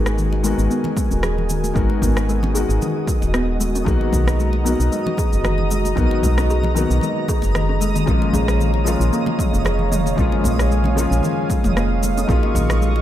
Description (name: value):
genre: organic downtempo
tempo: 114 BPM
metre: 4/4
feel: swing 55% on 16ths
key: G# dorian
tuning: A4 = 441 Hz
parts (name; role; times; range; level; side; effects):
- felt-muted upright piano; accompaniment; 0.0-13.0 s; C#3 to A#4; -25 LUFS; left 5 dB; sidechain pumping, digital delay, shimmer reverb
- warm analog pad; sustained chords; 0.0-13.0 s; F#3 to C#6; -26 LUFS; right 1 dB; chorus, sidechain pumping, shimmer reverb
- kalimba; arpeggios; 0.0-13.0 s; D#3 to G#4; -24 LUFS; equal; low-pass filter, digital delay, shimmer reverb
- woody FM bass; bass; 0.0-13.0 s; D#1 to B1; -20 LUFS; equal; sidechain pumping
- twinkling granular texture; texture; 0.1-13.0 s; D#5; -32 LUFS; right 4 dB; built-in reverb, shimmer reverb
- deep house drum kit; drums; 0.1-12.9 s; rim click, shaker, toms; -27 LUFS; right 1 dB; overdrive
- congas; percussion; 0.3-13.0 s; none; -31 LUFS; left 2 dB; none
- electronic kick drum; drums; 1.0-12.7 s; none; -22 LUFS; equal; overdrive
room: light reverb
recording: none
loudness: -16 LUFS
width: side -12 dB against mid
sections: 0.0-13.0 A section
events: filter sweep on kalimba 0.0-13.0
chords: 0.0 G#m9; 3.9 Bmaj7; 8.1 A#m7; 12.3 D#m9